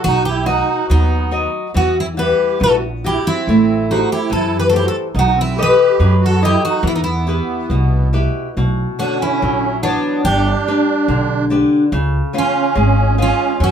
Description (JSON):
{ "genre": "fado-style ballad", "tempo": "71 BPM", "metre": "2/4", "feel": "rubato", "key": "E harmonic minor, B harmonic minor from 8.6 s", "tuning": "A4 = 440 Hz", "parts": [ { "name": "picked twelve-string acoustic guitar", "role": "melody", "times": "0.0-13.7 s", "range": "D4 to B4", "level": "-18 LUFS", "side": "left 2 dB", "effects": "none" }, { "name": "musette accordion", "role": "second line", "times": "0.0-13.7 s", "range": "B3 to G4", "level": "-21 LUFS", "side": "right 5 dB", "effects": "none" }, { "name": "flamenco guitar", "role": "accompaniment", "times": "0.0-13.7 s", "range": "B2 to F#5", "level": "-19 LUFS", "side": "left 1 dB", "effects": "none" }, { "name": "upright bass", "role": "bass", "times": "0.1-13.7 s", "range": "G1 to F#2", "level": "-17 LUFS", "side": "right 1 dB", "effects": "none" } ], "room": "light reverb", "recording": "band playing live in one room", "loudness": "-13 LUFS", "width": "side -8 dB against mid", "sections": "0.0-8.6 A section; 8.6-13.7 B section", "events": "none", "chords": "0.1 B; 1.8 Emadd9; 3.5 Am7; 5.1 B7; 6.8 Em; 8.6 Bmadd9; 10.2 G; 11.9 C#7", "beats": "| 0.07 0.91 | 1.76 2.62 | 3.47 4.31 | 5.15 5.99 | 6.83 7.69 | 8.55 9.40 | 10.24 11.08 | 11.91 12.75 | 13.60" }